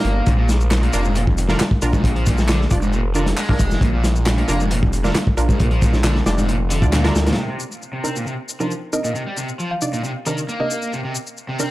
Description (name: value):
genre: breakbeat, breaks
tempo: 135 BPM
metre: 4/4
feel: straight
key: C minor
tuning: A4 = 439 Hz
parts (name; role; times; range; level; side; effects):
- cranked stack guitar; riff; 0.0-11.7 s; Ab2 to C4; -25 LUFS; equal; overdrive, low-pass filter, dub echo
- filtered dub chord stab; stabs; 0.0-11.7 s; C3 to D5; -27 LUFS; right 2 dB; chorus, cassette tape, dub echo
- phased detuned saw bass; bass; 0.0-7.3 s; F1 to D2; -19 LUFS; equal; phaser
- crunchy breakbeat drum kit; drums; 0.0-7.4 s; hi-hat, kick drum, snare drum; -20 LUFS; equal; none
- electronic shaker and handclaps; drums; 0.3-11.7 s; none; -29 LUFS; left 1 dB; overdrive
- folk marimba with medium hard mallets; melody; 8.9-11.0 s; Eb5 to F5; -29 LUFS; equal; small speaker sound, vintage 12-bit sampler grit, dub echo
room: light reverb, studio reverb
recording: dark, warm production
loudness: -17 LUFS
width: side -17 dB against mid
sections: 0.0-7.4 A section; 7.4-11.7 B section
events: none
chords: 0.3 Bb; 7.4 Cm7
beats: | 0.26 0.71 1.15 1.60 | 2.04 2.49 2.93 3.38 | 3.82 4.26 4.71 5.15 | 5.60 6.04 6.49 6.93 | 7.38 7.82 8.26 8.71 | 9.15 9.60 10.04 10.49 | 10.93 11.38